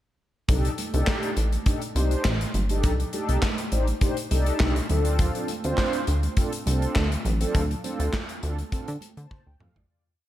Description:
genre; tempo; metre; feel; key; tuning
early-eighties boogie funk; 102 BPM; 4/4; straight; C dorian; A4 = 440 Hz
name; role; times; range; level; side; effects
mellow synth brass; accompaniment; 0.5-10.0 s; C4 to A5; -29 LUFS; equal; chorus
plucky analog bass; bass; 0.5-9.9 s; G1 to D3; -24 LUFS; equal; none
modern studio drum kit; drums; 0.5-9.9 s; handclaps, hi-hat, kick drum, snare drum, toms; -27 LUFS; equal; none
congas; percussion; 0.5-9.7 s; none; -37 LUFS; right 4 dB; none
room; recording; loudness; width
light reverb, small room ambience; none; -22 LUFS; side -13 dB against mid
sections
0.5-9.9 verse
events
fade-out 7.5-9.9; drum fill 9.3-9.9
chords
0.5 Cm69; 4.9 Dm7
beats
| 0.49 1.07 1.66 2.25 | 2.84 3.43 4.02 4.60 | 5.19 5.78 6.37 6.96 | 7.55 8.13 8.72 9.31

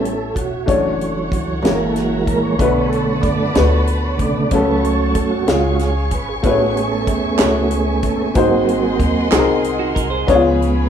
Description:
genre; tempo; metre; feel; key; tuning
slow gospel; 62 BPM (dotted quarters); 6/8; straight; F# minor; A4 = 440 Hz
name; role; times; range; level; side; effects
warm upright piano; accompaniment; 0.0-10.9 s; G#2 to C#5; -19 LUFS; left 3 dB; none
tonewheel organ; sustained chords; 0.0-10.9 s; C#3 to D5; -19 LUFS; right 4 dB; slow rotary speaker, chorus vibrato
warm studio string section; sustained chords; 0.0-10.9 s; A4 to C#6; -28 LUFS; equal; none
upright bass; bass; 0.0-10.9 s; E1 to F#2; -22 LUFS; equal; none
tight funk drum kit; drums; 0.1-10.8 s; hi-hat, kick drum, snare drum; -21 LUFS; equal; none
group handclap; percussion; 7.4-9.6 s; none; -24 LUFS; right 8 dB; none
clean electric guitar; second line; 9.8-10.4 s; D#4 to B#4; -23 LUFS; right 9 dB; none
room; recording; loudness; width
wet large studio reverb, RT60 0.8 s; band playing live in one room; -14 LUFS; side -8 dB against mid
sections
0.0-10.9 A section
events
tonewheel organ solo 0.0-10.9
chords
0.0 A7; 0.7 Dmaj7/F#; 1.6 F#7; 2.6 Bm7; 4.5 F#m/C#; 5.5 C#; 6.4 Amaj7; 8.4 G#7; 10.3 C#7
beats
| 0.68 1.64 | 2.60 3.56 | 4.52 5.48 | 6.44 7.40 | 8.37 9.32 | 10.29

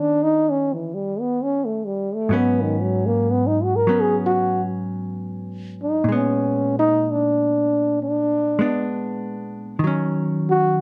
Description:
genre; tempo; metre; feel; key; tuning
jazz; 64 BPM; 4/4; swing 69% on 8ths; Eb minor; A4 = 440 Hz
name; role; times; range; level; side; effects
mellow trombone; melody; 0.0-10.8 s; Eb3 to Bb4; -22 LUFS; equal; none
hollow-body jazz guitar; accompaniment; 0.0-10.8 s; Ab2 to G4; -26 LUFS; equal; none
room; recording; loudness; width
light reverb; none; -21 LUFS; mono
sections
0.0-10.8 A section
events
trombone solo 0.0-10.8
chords
0.0 Ebaug7; 2.3 Abm7; 6.1 Bb7b9; 9.8 Ebm7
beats
0.40 1.35 | 2.30 3.24 4.19 5.13 | 6.07 7.01 7.94 8.88 | 9.81 10.74

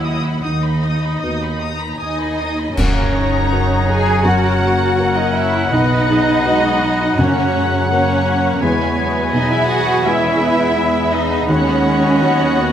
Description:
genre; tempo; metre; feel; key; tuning
cinematic, emotional film score for orchestra; 82 BPM; 4/4; rubato; F# mixolydian; A4 = 440 Hz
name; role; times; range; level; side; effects
muted symphonic violin section; melody; 0.0-12.7 s; E5 to D#6; -25 LUFS; left 6 dB; none
muted symphonic violin section; second line; 0.0-12.7 s; B4 to A#5; -26 LUFS; left 3 dB; none
felt-muted upright piano; accompaniment; 0.0-12.7 s; B1 to B4; -24 LUFS; equal; none
muted symphonic viola section; accompaniment; 0.0-12.7 s; G#3 to C#5; -25 LUFS; right 1 dB; none
concert harp; arpeggios; 0.0-12.7 s; F#2 to G#5; -26 LUFS; left 8 dB; none
muted studio double bass section; bass; 0.0-12.7 s; B1 to F#2; -22 LUFS; right 2 dB; none
muted symphonic cello section; bass; 0.0-12.7 s; D#2 to G#4; -19 LUFS; right 3 dB; none
clear clarinet; second line; 2.8-12.7 s; C#5 to F#5; -27 LUFS; left 2 dB; none
mellow hollow silver concert flute; second line; 2.8-12.7 s; A#5 to B5; -25 LUFS; left 1 dB; none
warm cor anglais; second line; 2.8-12.7 s; F#5 to G#5; -26 LUFS; right 2 dB; none
clash cymbals and concert bass drum; percussion; 2.8-4.2 s; none; -24 LUFS; equal; none
mellow French horn section; sustained chords; 4.2-12.7 s; F#3 to C#4; -25 LUFS; left 3 dB; none
timpani; percussion; 7.2-8.2 s; F#2; -24 LUFS; left 1 dB; none
room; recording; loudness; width
moderate scoring stage reverb, RT60 1.8 s; none; -14 LUFS; side -9 dB against mid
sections
0.0-2.8 A section; 2.8-12.7 B section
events
band accent 2.8-3.5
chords
0.0 B/D#; 2.8 F#; 5.7 B; 7.2 F#; 8.6 E; 11.5 B/D#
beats
0.44 1.23 2.00 | 2.77 3.51 4.24 4.98 | 5.71 6.45 7.18 7.91 | 8.62 9.33 10.05 10.77 | 11.49 12.20

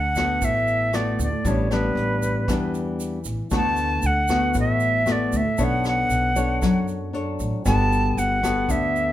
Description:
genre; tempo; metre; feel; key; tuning
bossa nova; 116 BPM; 4/4; straight; D major; A4 = 440 Hz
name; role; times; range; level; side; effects
silver concert flute; melody; 0.0-9.1 s; B4 to A5; -23 LUFS; right 1 dB; none
nylon-string guitar; accompaniment; 0.0-9.1 s; A2 to C#5; -24 LUFS; left 2 dB; none
upright bass; bass; 0.0-9.1 s; G1 to F#2; -26 LUFS; right 1 dB; none
vintage brush drum kit; drums; 0.2-9.1 s; hi-hat, kick drum, rim click; -31 LUFS; right 1 dB; none
egg shaker; percussion; 0.2-9.1 s; none; -38 LUFS; right 8 dB; none
room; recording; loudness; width
moderate large studio reverb, RT60 0.8 s; minimal, uncompressed stereo recording; -20 LUFS; side -13 dB against mid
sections
0.0-9.1 A section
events
none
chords
0.0 D6; 1.5 A9sus4; 3.5 D6; 5.6 Bm9; 7.7 Gmaj9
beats
0.42 0.94 | 1.45 1.97 2.49 3.00 | 3.52 4.04 4.56 5.07 | 5.59 6.11 6.62 7.14 | 7.66 8.17 8.69

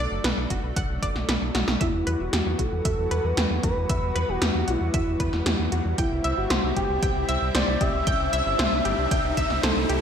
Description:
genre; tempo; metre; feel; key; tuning
synthwave; 115 BPM; 4/4; straight; E minor; A4 = 441 Hz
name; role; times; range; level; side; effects
lush unison pad; sustained chords; 0.0-10.0 s; E3 to F#4; -33 LUFS; equal; chorus, sidechain pumping
analog pluck; arpeggios; 0.0-10.0 s; F#4 to G5; -31 LUFS; equal; chorus, ping-pong delay
round analog bass; bass; 0.0-10.0 s; E1 to E2; -28 LUFS; equal; none
80s electronic pad drums; drums; 0.2-10.0 s; hi-hat, snare drum; -27 LUFS; equal; gated reverb
electronic kick drum; drums; 0.5-9.5 s; none; -28 LUFS; equal; none
expressive synth lead; melody; 1.8-10.0 s; E4 to E5; -28 LUFS; equal; chorus, ping-pong delay
riser; sound effects; 5.0-10.0 s; none; -35 LUFS; right 1 dB; none
room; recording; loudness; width
wet plate reverb, RT60 1.4 s, digital ambience; bright 1980s-style digital production; -22 LUFS; side -8 dB against mid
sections
0.0-1.8 A section; 1.8-10.0 B section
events
drum fill 1.5; riser 5.0-10.0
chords
0.0 Bm; 1.8 Emadd9; 6.0 C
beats
0.24 0.76 1.29 | 1.81 2.33 2.85 3.37 | 3.90 4.42 4.94 5.46 | 5.98 6.50 7.03 7.55 | 8.07 8.59 9.11 9.63

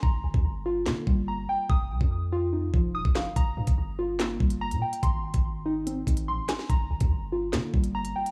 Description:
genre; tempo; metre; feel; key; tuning
hip hop, drill; 144 BPM; 4/4; half-time; G phrygian; A4 = 441 Hz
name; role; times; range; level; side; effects
warbly dusty pluck; arpeggios; 0.0-8.3 s; F3 to Eb6; -32 LUFS; equal; chorus, analog delay
long sustained 808-style bass; bass; 0.0-8.1 s; Eb1 to D3; -34 LUFS; equal; none
drill drum kit; drums; 0.0-8.3 s; handclaps, hi-hat, kick drum, snare drum; -28 LUFS; equal; none
room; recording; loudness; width
digital ambience; dry, gritty hardware recording, small room ambience; -27 LUFS; mono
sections
0.0-8.3 A section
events
break 0.0-3.4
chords
0.0 Gm7; 1.7 F5; 3.4 Gm7; 5.0 Ab; 6.7 Gm7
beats
| 0.03 0.45 0.86 1.28 | 1.70 2.11 2.53 2.95 | 3.36 3.78 4.20 4.61 | 5.03 5.45 5.86 6.28 | 6.70 7.11 7.53 7.95

